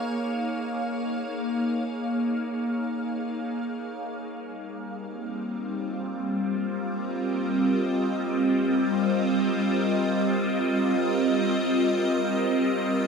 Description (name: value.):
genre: ambient.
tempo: free time.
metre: none.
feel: none.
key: Eb mixolydian.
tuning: A4 = 444 Hz.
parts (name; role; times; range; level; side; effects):
evolving wavetable pad; solo; 0.0-13.1 s; G3 to F5; -24 LUFS; equal; ensemble chorus, built-in reverb, phaser, ping-pong delay.
room: wet huge ambient reverb, RT60 7.5 s.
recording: none.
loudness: -24 LUFS.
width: side -5 dB against mid.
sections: 0.0-4.3 A section; 4.3-13.1 B section.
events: none.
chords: 0.0 Bbm7; 4.3 Ebadd9.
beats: free time.